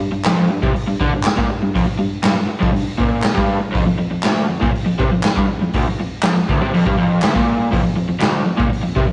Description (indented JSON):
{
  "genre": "garage rock duo or trio",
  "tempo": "121 BPM",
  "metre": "4/4",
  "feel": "straight",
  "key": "unclear",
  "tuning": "A4 = 440 Hz",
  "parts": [
    { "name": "crunchy overdriven guitar", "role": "riff", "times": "0.0-9.1 s", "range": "D2 to D3", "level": "-20 LUFS", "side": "equal", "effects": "none" },
    { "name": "group handclap", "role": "percussion", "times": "0.2-8.3 s", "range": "none", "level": "-28 LUFS", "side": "equal", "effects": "none" },
    { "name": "raw garage drum kit", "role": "drums", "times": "0.3-9.1 s", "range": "hi-hat, kick drum, snare drum", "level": "-21 LUFS", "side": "equal", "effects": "none" }
  ],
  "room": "moderate stone room reverb, RT60 1.2 s",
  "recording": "rough rehearsal-room recording, cassette tape, nothing above 10.8 kHz",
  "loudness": "-18 LUFS",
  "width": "mono",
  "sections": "0.0-9.1 A section",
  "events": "none",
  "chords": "none",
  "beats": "0.25 0.75 1.25 | 1.75 2.25 2.75 3.25 | 3.75 4.24 4.74 5.24 | 5.73 6.23 6.73 7.22 | 7.72 8.21 8.71"
}